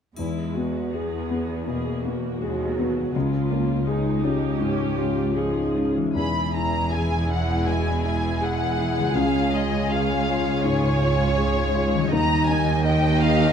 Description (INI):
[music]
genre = cinematic, emotional film score for orchestra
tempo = 81 BPM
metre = 4/4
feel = rubato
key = unclear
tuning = A4 = 440 Hz
[part]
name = rich studio viola section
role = accompaniment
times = 0.2-13.5 s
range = Eb3 to G#4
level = -30 LUFS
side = right 1 dB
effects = none
[part]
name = warm grand piano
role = accompaniment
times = 0.2-13.5 s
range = Db2 to Eb5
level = -26 LUFS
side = left 2 dB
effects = none
[part]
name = concert harp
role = arpeggios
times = 0.2-13.5 s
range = Db3 to Eb5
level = -30 LUFS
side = left 5 dB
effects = none
[part]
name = rich studio cello section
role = bass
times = 0.2-13.5 s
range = Db2 to E2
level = -28 LUFS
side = right 2 dB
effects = none
[part]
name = triangle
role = percussion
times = 0.2-1.6 s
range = none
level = -49 LUFS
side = equal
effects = none
[part]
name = warm studio violin section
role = melody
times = 6.2-13.5 s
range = Db5 to B5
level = -26 LUFS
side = equal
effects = none
[part]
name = warm studio violin section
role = second line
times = 6.2-13.5 s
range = G4 to Eb5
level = -28 LUFS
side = left 2 dB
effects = none
[part]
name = dark studio double bass section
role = bass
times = 6.2-13.5 s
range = E1 to Eb2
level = -27 LUFS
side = right 4 dB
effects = none
[sound]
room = moderate scoring stage reverb, RT60 1.9 s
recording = close, detailed microphones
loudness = -20 LUFS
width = side -8 dB against mid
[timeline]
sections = 0.2-6.2 A section; 6.2-13.5 B section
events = none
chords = 0.2 E; 3.1 Db; 6.2 E; 9.2 Db; 12.1 Eb